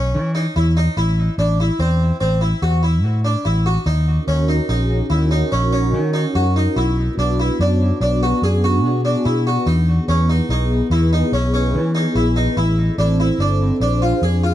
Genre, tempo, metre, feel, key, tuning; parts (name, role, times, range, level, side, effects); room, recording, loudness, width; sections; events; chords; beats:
progressive instrumental, progressive; 145 BPM; 7/4; straight; A4 = 438 Hz
harpsichord; arpeggios; 0.0-14.5 s; C4 to Ab4; -22 LUFS; equal; tape echo
fingered electric bass; bass; 0.0-14.5 s; G1 to E3; -17 LUFS; equal
sweeping resonant pad; accompaniment; 4.2-14.5 s; B3 to Db5; -22 LUFS; equal; chorus
light reverb; dark, warm production; -15 LUFS; side -12 dB against mid
0.0-14.5 A section
0.0 E5; 1.0 Am; 3.9 Ebm7; 6.8 Bm; 9.7 E; 12.6 Am; 13.8 Bb7
0.14 0.56 | 0.97 1.38 1.80 2.21 2.62 3.04 3.45 | 3.87 4.28 4.70 5.11 5.53 5.94 6.36 | 6.77 7.19 7.60 8.02 8.43 8.85 9.26 | 9.67 10.09 10.50 10.92 11.33 11.75 12.16 | 12.57 12.99 13.40 13.81 14.23